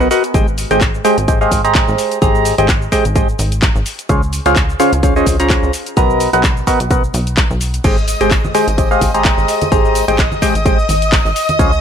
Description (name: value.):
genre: piano house.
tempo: 128 BPM.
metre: 4/4.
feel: swing 56% on 16ths.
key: Ab major.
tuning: A4 = 445 Hz.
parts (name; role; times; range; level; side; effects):
percussive organ stab; riff; 0.0-11.7 s; Db3 to Bb5; -15 LUFS; equal; chorus, phaser, sidechain pumping, dub echo.
plucky analog bass; bass; 0.0-11.8 s; Ab1 to Db2; -19 LUFS; equal; sidechain pumping.
house drum kit; drums; 0.0-11.8 s; cabasa, crash cymbal, handclaps, hi-hat; -21 LUFS; left 1 dB; none.
electronic kick drum; drums; 0.3-11.7 s; none; -15 LUFS; equal; none.
string machine, violins; sustained chords; 7.8-11.8 s; Eb5 to Eb6; -20 LUFS; left 1 dB; ensemble chorus, sidechain pumping.
tambourine and congas; percussion; 7.8-11.7 s; none; -26 LUFS; right 2 dB; none.
room: light reverb.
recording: none.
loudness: -11 LUFS.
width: side -8 dB against mid.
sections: 0.0-11.8 A section.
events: none.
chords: 0.3 Abmaj7; 3.9 Dbmaj7; 5.7 Bmaj7; 7.8 Abmaj7.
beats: | 0.34 0.81 1.28 1.75 | 2.22 2.69 3.16 3.62 | 4.09 4.56 5.03 5.50 | 5.97 6.44 6.91 7.38 | 7.84 8.31 8.78 9.25 | 9.72 10.19 10.66 11.12 | 11.59.